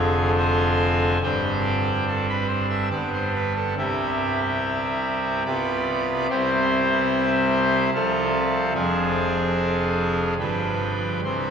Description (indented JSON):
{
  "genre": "classical, chorale-style piece for pipe organ",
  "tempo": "72 BPM",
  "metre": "3/4",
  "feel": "straight",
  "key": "C major",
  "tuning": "A4 = 441 Hz",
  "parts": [
    { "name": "pipe organ, trumpet", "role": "solo", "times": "0.0-11.5 s", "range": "F1 to E6", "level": "-20 LUFS", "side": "equal", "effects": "none" }
  ],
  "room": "wet cathedral reverb, RT60 6.2 s",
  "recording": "small room ambience",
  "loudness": "-20 LUFS",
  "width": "side -7 dB against mid",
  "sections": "0.0-11.5 A section",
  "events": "none",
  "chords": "0.0 Dm7b5/F; 1.2 Gsus4; 2.9 G; 3.8 C; 5.5 G7/C; 6.3 C; 7.9 F/C; 8.8 Dm7b5/F; 10.4 G7",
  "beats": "0.37 | 1.21 2.06 2.92 | 3.78 4.62 5.47 | 6.30 7.12 7.94 | 8.76 9.57 10.39 | 11.23"
}